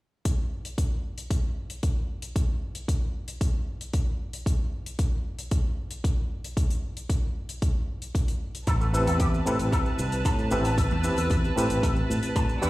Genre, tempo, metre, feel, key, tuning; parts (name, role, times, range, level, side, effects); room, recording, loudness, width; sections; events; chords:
nu-disco, nu disco; 114 BPM; 4/4; straight; A minor; A4 = 440 Hz
electronic kick drum; drums; 0.3-12.5 s; -25 LUFS; equal
hi-hat; drums; 0.3-12.5 s; -40 LUFS; left 3 dB
rich chamber string section; sustained chords; 8.7-12.7 s; B4 to E6; -33 LUFS; right 1 dB; vintage 12-bit sampler grit, sidechain pumping
electric guitar with an envelope filter; riff; 8.7-12.7 s; A3 to A5; -33 LUFS; left 1 dB; analog chorus, dub echo
picked electric bass with an envelope filter; bass; 8.7-12.7 s; A1 to A2; -26 LUFS; equal
maracas; percussion; 8.7-12.7 s; -41 LUFS; equal
barky reed electric piano; accompaniment; 8.9-12.7 s; C4 to B4; -28 LUFS; equal; overdrive, fast tremolo, sidechain pumping, dub echo
studio reverb; played on a big sound system in a bare room, large studio reverb; -25 LUFS; side -18 dB against mid
0.3-12.7 A section
0.3 N.C.; 8.7 Am9